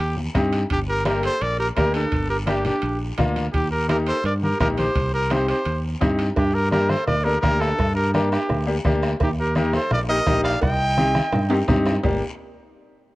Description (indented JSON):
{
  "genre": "latin, cumbia",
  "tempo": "169 BPM",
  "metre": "4/4",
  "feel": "straight",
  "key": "G minor",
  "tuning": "A4 = 445 Hz",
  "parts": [
    { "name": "brilliant trumpet", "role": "melody", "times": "0.0-11.6 s", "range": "G4 to G5", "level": "-24 LUFS", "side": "equal", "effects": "none" },
    { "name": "fingered electric bass", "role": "bass", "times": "0.0-12.2 s", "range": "G1 to G2", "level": "-24 LUFS", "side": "equal", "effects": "none" },
    { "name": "congas", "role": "percussion", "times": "0.0-12.1 s", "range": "none", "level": "-27 LUFS", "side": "left 1 dB", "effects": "none" },
    { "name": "guiro", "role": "percussion", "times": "0.0-12.1 s", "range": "none", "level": "-39 LUFS", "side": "left 2 dB", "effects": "none" },
    { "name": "timbales and cowbell", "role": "percussion", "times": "0.0-12.1 s", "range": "none", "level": "-33 LUFS", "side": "right 4 dB", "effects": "none" },
    { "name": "bright upright piano", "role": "accompaniment", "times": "0.3-12.2 s", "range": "Bb3 to Bb4", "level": "-25 LUFS", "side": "left 2 dB", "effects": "none" },
    { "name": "bombo", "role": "percussion", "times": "0.4-12.1 s", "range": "none", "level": "-27 LUFS", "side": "right 1 dB", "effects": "none" },
    { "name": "bright clarinet", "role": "second line", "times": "0.7-11.6 s", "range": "D4 to Eb5", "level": "-30 LUFS", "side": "right 2 dB", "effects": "none" }
  ],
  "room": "light reverb",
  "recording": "worn, warbling old tape, cassette tape, warbly pitch drift",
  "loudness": "-19 LUFS",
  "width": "side -18 dB against mid",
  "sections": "0.0-6.4 A section; 6.4-12.0 B section; 12.0-13.2 C section",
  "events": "drum fill 11.3-12.0",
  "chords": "0.0 Cm; 0.7 Gm; 3.5 Eb; 5.0 Cm; 6.4 Gm; 9.2 Eb; 10.6 Cm; 12.0 Gm"
}